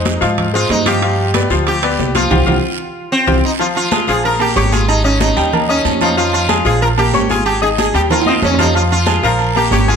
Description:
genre	latin, salsa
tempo	186 BPM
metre	4/4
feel	straight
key	F minor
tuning	A4 = 440 Hz
part	sitar	melody	0.0-10.0 s	C4 to Bb4	-17 LUFS	right 1 dB	none
part	bright concert grand piano	accompaniment	0.0-10.0 s	F3 to Ab6	-18 LUFS	left 5 dB	none
part	upright bass	bass	0.0-10.0 s	Ab1 to Ab2	-18 LUFS	right 1 dB	none
part	congas	percussion	0.1-10.0 s	none	-23 LUFS	left 2 dB	none
part	guiro	percussion	0.1-10.0 s	none	-27 LUFS	right 8 dB	none
part	timbales and agogo bells	percussion	0.1-9.9 s	none	-21 LUFS	right 10 dB	none
room	moderate large studio reverb, RT60 1.3 s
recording	none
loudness	-12 LUFS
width	side -6 dB against mid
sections	0.0-3.6 A section; 3.6-10.0 B section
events	band accent 2.3-3.6; drum fill 2.6-3.6, 8.1-8.7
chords	0.0 Fm7; 1.0 G7; 2.3 Csus4; 3.6 Fm; 4.2 Bbm; 4.9 Ab5; 5.5 Ebsus2; 6.2 Fm; 6.8 Bbm; 7.5 Ab5; 8.1 Ebsus2; 8.7 Fm; 9.4 Bbm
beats	0.05 0.38 0.70 | 1.02 1.34 1.66 1.99 | 2.31 2.63 2.95 3.27 | 3.60 3.92 4.24 4.56 | 4.88 5.21 5.53 5.85 | 6.17 6.49 6.81 7.14 | 7.46 7.78 8.10 8.42 | 8.75 9.07 9.39 9.71

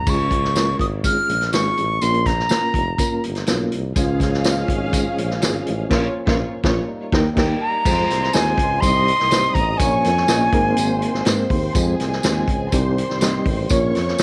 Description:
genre	uptempo 1960s-style soul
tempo	123 BPM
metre	4/4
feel	straight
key	unclear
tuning	A4 = 440 Hz
part	silver concert flute	melody	0.0-3.2, 7.6-11.2 s	Ab5 to F6	-22 LUFS	equal	none
part	reed electric piano	accompaniment	0.1-14.2 s	G3 to Eb5	-26 LUFS	equal	fast tremolo
part	mellow tuba	bass	0.1-14.2 s	F1 to Ab2	-26 LUFS	equal	none
part	vintage drum kit	drums	0.1-14.2 s	crash cymbal, hi-hat, kick drum, snare drum	-25 LUFS	equal	none
part	tambourine	percussion	0.1-14.2 s	none	-33 LUFS	equal	none
part	muted studio string section	second line	4.0-14.2 s	Db4 to Eb6	-30 LUFS	equal	tape echo
part	percussive tonewheel organ	sustained chords	4.0-14.2 s	Eb3 to F4	-33 LUFS	equal	none
room	moderate plate reverb, RT60 1.2 s, small room ambience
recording	none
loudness	-19 LUFS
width	mono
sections	0.1-7.9 A section; 7.9-14.2 B section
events	band accent 5.9-7.9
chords	0.1 Db; 2.0 Bbm; 4.0 Db; 5.9 Bbm; 6.9 Eb; 7.9 Fm; 8.8 Cm; 9.8 Bbm; 10.5 Abadd9; 11.8 Fm; 12.7 Cm; 13.7 Bbm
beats	| 0.07 0.56 1.04 1.53 | 2.02 2.50 2.99 3.47 | 3.96 4.45 4.93 5.42 | 5.90 6.39 6.88 7.36 | 7.85 8.34 8.82 9.31 | 9.80 10.29 10.77 11.26 | 11.75 12.24 12.73 13.21 | 13.70 14.19

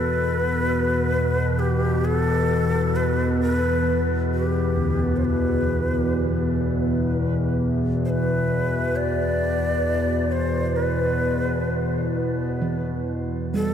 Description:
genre	dark ambient drone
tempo	free time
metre	none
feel	none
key	E minor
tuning	A4 = 441 Hz
part	breathy hollow shakuhachi	melody	0.0-13.7 s	G4 to D5	-26 LUFS	equal	tape echo
part	analog drone	drone	0.0-13.7 s	E2 to B2	-22 LUFS	left 1 dB	chorus
part	bronze singing bowl	texture	0.0-13.7 s	none	barely audible	none	none
part	gamelan-type bossed gongs	arpeggios	4.8-13.7 s	D2 to G3	-32 LUFS	right 2 dB	none
room	wet huge ambient reverb, RT60 7.1 s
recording	none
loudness	-20 LUFS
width	side -8 dB against mid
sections	0.0-13.7 A section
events	fade-out 12.0-13.7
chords	0.0 E5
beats	free time

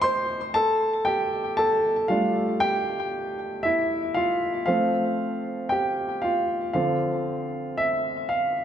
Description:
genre	pop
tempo	58 BPM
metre	4/4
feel	straight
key	unclear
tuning	A4 = 439 Hz
part	warm grand piano	solo	0.0-8.6 s	D3 to C6	-22 LUFS	equal	ping-pong delay
room	wet recital hall reverb, RT60 1.5 s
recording	none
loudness	-22 LUFS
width	side -9 dB against mid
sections	0.0-8.6 A section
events	grand piano solo 0.0-8.6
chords	0.0 Dm7; 0.5 Gsus2; 4.7 F; 6.8 Dm7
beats	| 0.55 1.58 2.62 3.65 | 4.68 5.72 6.75 7.79

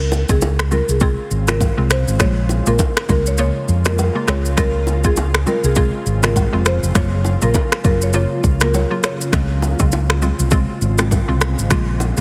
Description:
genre	afrobeats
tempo	101 BPM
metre	4/4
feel	swing 58% on 16ths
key	Db major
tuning	A4 = 440 Hz
part	hollow square pluck	accompaniment	0.0-12.2 s	Db3 to F4	-26 LUFS	equal	chorus
part	granular cloud pad	sustained chords	0.9-12.2 s	Db3 to F4	-30 LUFS	equal	built-in reverb
part	fingered electric bass	bass	0.0-12.2 s	F1 to F2	-20 LUFS	equal	none
part	deep house drum kit	drums	0.1-12.2 s	finger snaps, kick drum, rim click, shaker	-22 LUFS	equal	none
part	bongos and congas	percussion	0.1-12.2 s	none	-28 LUFS	equal	none
part	buzzing marimba with medium mallets	melody	0.3-9.2 s	Ab4 to Db5	-26 LUFS	equal	none
room	light reverb, digital ambience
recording	heavily compressed radio sound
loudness	-17 LUFS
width	mono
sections	0.0-12.2 A section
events	none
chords	0.0 Dbmaj7; 2.2 Bbm7; 4.3 Dbmaj7; 7.0 Gbmaj7; 9.3 Dbmaj7; 11.7 Bbm7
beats	0.42 1.01 1.61 | 2.20 2.79 3.39 3.98 | 4.58 5.17 5.76 6.36 | 6.95 7.55 8.14 8.73 | 9.33 9.92 10.52 11.11 | 11.71

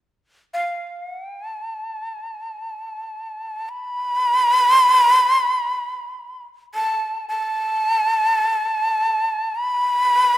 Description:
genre	japanese traditional, Japanese chamber music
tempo	free time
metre	none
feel	none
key	unclear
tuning	A4 = 440 Hz
part	breathy bright shakuhachi	solo	0.5-10.4 s	A5 to B5	-18 LUFS	equal	none
room	moderate concert hall reverb, RT60 1.8 s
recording	none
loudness	-16 LUFS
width	side -14 dB against mid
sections	0.0-10.4 A section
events	none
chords	none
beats	free time

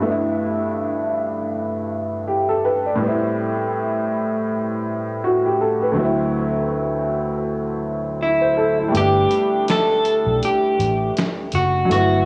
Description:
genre	lo-fi hip hop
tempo	81 BPM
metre	4/4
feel	swing 57% on 16ths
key	unclear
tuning	A4 = 439 Hz
part	clear upright piano	accompaniment	0.0-12.3 s	D2 to D5	-22 LUFS	equal	cassette tape
part	clean electric guitar	melody	8.2-12.3 s	E4 to A4	-20 LUFS	equal	cassette tape
part	vintage muted fingered electric bass	bass	8.9-12.3 s	F#1 to B1	-24 LUFS	equal	tube saturation
part	dusty soul sampler-style drum kit	drums	8.9-12.1 s	finger snaps, hi-hat, snare drum	-28 LUFS	equal	cassette tape
room	light reverb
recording	home recording on cassette, small room ambience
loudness	-20 LUFS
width	mono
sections	0.0-8.9 A section; 8.9-12.3 B section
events	kick muted 8.9-12.3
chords	0.0 Gmaj7; 3.0 Am9; 8.9 Gmaj7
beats	| 0.05 0.79 1.53 2.27 | 3.02 3.76 4.50 5.24 | 5.98 6.72 7.46 8.20 | 8.94 9.68 10.42 11.16 | 11.90

